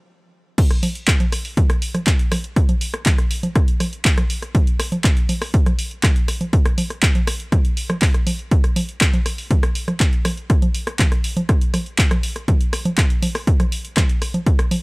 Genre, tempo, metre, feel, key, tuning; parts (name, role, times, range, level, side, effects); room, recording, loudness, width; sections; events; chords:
techno; 121 BPM; 4/4; straight
electronic kick drum; drums; 0.6-14.6 s; -17 LUFS; equal; high-pass filter on kick
punchy analog drum machine; drums; 0.6-14.8 s; congas, crash cymbal, handclaps, hi-hat, rim click; -22 LUFS; equal
little or no reverb; dry, gritty hardware recording; -16 LUFS; side -29 dB against mid
0.6-14.8 A section
stop 0.0-0.6; drop 0.6-14.8